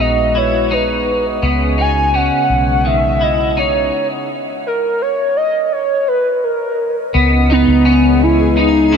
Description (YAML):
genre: dream pop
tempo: 84 BPM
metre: 4/4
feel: straight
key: unclear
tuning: A4 = 443 Hz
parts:
  - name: warbly nostalgic lead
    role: melody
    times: 0.0-9.0 s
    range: B3 to G#5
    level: -15 LUFS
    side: equal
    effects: chorus, ping-pong delay
  - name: warm analog pad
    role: sustained chords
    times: 0.0-9.0 s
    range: C#3 to D#5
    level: -21 LUFS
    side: right 1 dB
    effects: chorus
  - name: clean electric guitar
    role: arpeggios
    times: 0.0-9.0 s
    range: D#3 to E4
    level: -19 LUFS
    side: left 3 dB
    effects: ensemble chorus, ping-pong delay
  - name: vintage muted fingered electric bass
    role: bass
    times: 0.0-9.0 s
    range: A#1 to C#2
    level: -18 LUFS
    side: equal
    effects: none
  - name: backwards swelling texture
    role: texture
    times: 8.2-9.0 s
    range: G#4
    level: -26 LUFS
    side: equal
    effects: built-in reverb, ping-pong delay
room: moderate huge ambient reverb, RT60 7.6 s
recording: none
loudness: -12 LUFS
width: side -6 dB against mid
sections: 0.0-7.1 A section; 7.1-9.0 B section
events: stop 4.3-7.1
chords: 0.0 B6; 1.4 C#m7; 4.3 N.C.; 7.1 C#m7